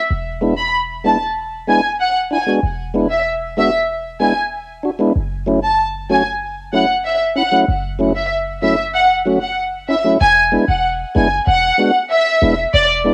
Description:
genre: dancehall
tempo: 95 BPM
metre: 4/4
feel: straight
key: unclear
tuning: A4 = 440 Hz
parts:
  - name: clean 808-style bass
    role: bass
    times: 0.1-13.1 s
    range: E1 to F#1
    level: -26 LUFS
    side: equal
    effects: none
  - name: tonewheel organ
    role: accompaniment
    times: 0.4-13.1 s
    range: F#3 to F#4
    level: -19 LUFS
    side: equal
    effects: stopped rotary speaker, cassette tape
  - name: warm studio violin section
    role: melody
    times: 0.6-12.9 s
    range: D5 to B5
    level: -18 LUFS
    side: equal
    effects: cassette tape, tape echo
room: moderate studio ambience, RT60 0.5 s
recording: home recording on cassette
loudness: -16 LUFS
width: mono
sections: 0.1-10.2 A section; 10.2-13.1 B section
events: none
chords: 0.1 E7; 5.2 F#m7; 10.2 E7

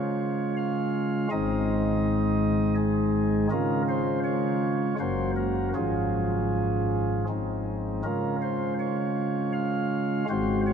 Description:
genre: classical, chorale-style piece for pipe organ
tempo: 80 BPM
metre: 3/4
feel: straight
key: Db major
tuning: A4 = 444 Hz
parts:
  - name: pipe organ, flutes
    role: solo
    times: 0.0-10.7 s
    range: Gb1 to F5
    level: -24 LUFS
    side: equal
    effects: none
room: wet cathedral reverb, RT60 5.4 s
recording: none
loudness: -24 LUFS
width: side -7 dB against mid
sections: 0.0-10.7 A section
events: none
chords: 0.0 Db; 1.3 Ab; 3.5 Db; 5.0 Gb; 5.7 Db/Ab; 7.3 Ab; 8.0 Db

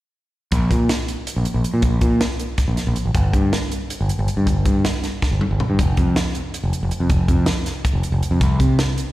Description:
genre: math rock and midwest emo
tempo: 319 BPM (eighths)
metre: 7/8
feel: straight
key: unclear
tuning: A4 = 441 Hz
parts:
  - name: growling fingered electric bass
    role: bass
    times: 0.5-8.8 s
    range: F1 to C3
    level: -18 LUFS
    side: equal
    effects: overdrive
  - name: compact cocktail drum kit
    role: drums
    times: 0.5-9.1 s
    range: hi-hat, kick drum, snare drum, toms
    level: -21 LUFS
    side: equal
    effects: none
room: little or no reverb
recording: live gig heard through the venue's PA, recital hall reverb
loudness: -17 LUFS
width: side -16 dB against mid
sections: 0.5-9.1 A section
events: drum fill 5.2-5.8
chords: none

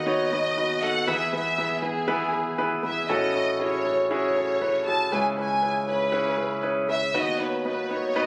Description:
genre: pop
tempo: 119 BPM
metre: 4/4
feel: straight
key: E major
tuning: A4 = 440 Hz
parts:
  - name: warm studio violin section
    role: melody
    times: 0.0-8.3 s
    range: G#4 to A5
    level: -29 LUFS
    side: equal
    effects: tape echo
  - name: warm concert grand piano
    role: accompaniment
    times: 0.0-8.3 s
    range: A1 to C#5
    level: -27 LUFS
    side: equal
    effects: none
room: moderate large studio reverb, RT60 0.9 s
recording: recorded on a phone in the room, club reverb, compression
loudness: -25 LUFS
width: mono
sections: 0.0-8.3 A section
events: none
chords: 0.0 B/D#; 1.1 E; 3.1 A6; 5.1 C#m7; 7.1 B/D#

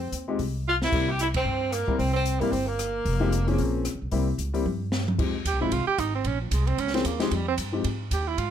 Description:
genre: jazz, small-group swing and bop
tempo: 226 BPM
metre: 4/4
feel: swing 59% on 8ths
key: F minor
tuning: A4 = 441 Hz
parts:
  - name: clear tenor saxophone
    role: melody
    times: 0.0-3.7 s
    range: Bb3 to G4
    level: -29 LUFS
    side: left 2 dB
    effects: none
  - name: warm tenor saxophone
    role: second line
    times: 0.0-8.5 s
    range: F3 to G4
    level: -29 LUFS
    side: right 8 dB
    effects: none
  - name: upright bass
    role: bass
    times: 0.0-8.5 s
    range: F1 to Ab2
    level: -28 LUFS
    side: equal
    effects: none
  - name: open jazz drum kit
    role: drums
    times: 0.1-8.4 s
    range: crash cymbal, hi-hat, kick drum, ride cymbal, rim click, snare drum, toms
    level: -32 LUFS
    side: equal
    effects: none
  - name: warm grand piano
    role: accompaniment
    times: 0.3-7.8 s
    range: F3 to Bb4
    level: -29 LUFS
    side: left 4 dB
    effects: none
room: little or no reverb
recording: close, detailed microphones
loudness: -24 LUFS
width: side -9 dB against mid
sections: 0.0-5.2 A section; 5.2-8.5 B section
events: drum fill 0.7, 4.7-5.2; band accent 1.3; tenor saxophone solo 5.2-8.5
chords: 0.0 F7(no3); 0.9 C7; 3.1 Fm7; 3.6 Bbm7; 4.1 C7; 5.2 Fm7; 6.2 Bbm7; 7.3 Fm7

